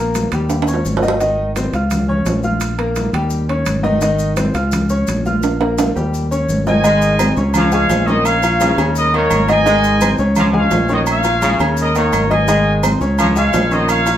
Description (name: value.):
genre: latin, salsa.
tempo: 170 BPM.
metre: 4/4.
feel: straight.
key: Ab major.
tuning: A4 = 437 Hz.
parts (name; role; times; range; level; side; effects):
clear baby grand piano; accompaniment; 0.0-14.2 s; Db3 to F6; -19 LUFS; left 1 dB; none.
fingered electric bass; bass; 0.0-14.2 s; Ab1 to Eb2; -18 LUFS; equal; none.
maracas; percussion; 0.1-14.2 s; none; -32 LUFS; left 4 dB; none.
timbales and agogo bells; percussion; 0.1-14.2 s; none; -22 LUFS; right 4 dB; none.
congas; percussion; 0.2-14.2 s; none; -22 LUFS; equal; none.
clear trumpet section; melody; 6.7-14.2 s; Bb4 to Ab5; -18 LUFS; equal; none.
brilliant trombone section; second line; 6.8-14.0 s; Db3 to Ab3; -20 LUFS; equal; none.
room: wet studio reverb, RT60 0.6 s.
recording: heard from further back in the room.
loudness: -13 LUFS.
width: side -11 dB against mid.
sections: 0.0-6.8 A section; 6.8-14.2 B section.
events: drum fill 0.5-1.2, 5.4-6.8.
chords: 0.5 Eb7; 1.2 Ab; 1.9 Db; 2.6 Bb5; 3.3 Eb7; 4.0 Ab; 4.7 Db; 5.4 Bb5; 6.1 Eb7; 6.8 Ab; 7.5 Db; 8.3 Bbm; 9.0 Eb5; 9.7 Ab; 10.4 Db; 11.1 Bbm; 11.8 Eb5; 12.5 Ab; 13.2 Db.